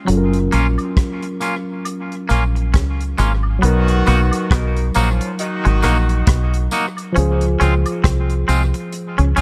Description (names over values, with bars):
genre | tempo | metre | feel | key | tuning
lovers rock reggae | 68 BPM | 4/4 | swing 58% on 16ths | unclear | A4 = 440 Hz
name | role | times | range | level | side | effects
tine electric piano | accompaniment | 0.0-9.4 s | F3 to C5 | -25 LUFS | equal | none
twangy electric guitar | riff | 0.1-9.4 s | Gb3 to Db4 | -27 LUFS | equal | harmonic tremolo
deep dub fingered electric bass | bass | 0.1-9.4 s | Gb1 to Db2 | -19 LUFS | equal | none
damped 70s drum kit | drums | 0.1-9.4 s | hi-hat, kick drum, rim click | -22 LUFS | equal | none
twangy electric guitar | stabs | 0.5-9.4 s | Ab3 to Gb4 | -26 LUFS | equal | tape echo
tambourine and woodblock | percussion | 0.5-9.4 s | none | -34 LUFS | equal | none
warm horn section | second line | 3.6-6.7 s | Cb3 to Bb4 | -26 LUFS | equal | none
room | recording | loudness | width
small room ambience | none | -18 LUFS | mono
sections
0.0-3.6 A section; 3.6-9.4 B section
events
none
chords
0.1 Gbmaj7; 3.6 Cbmaj7; 7.2 Dbmaj7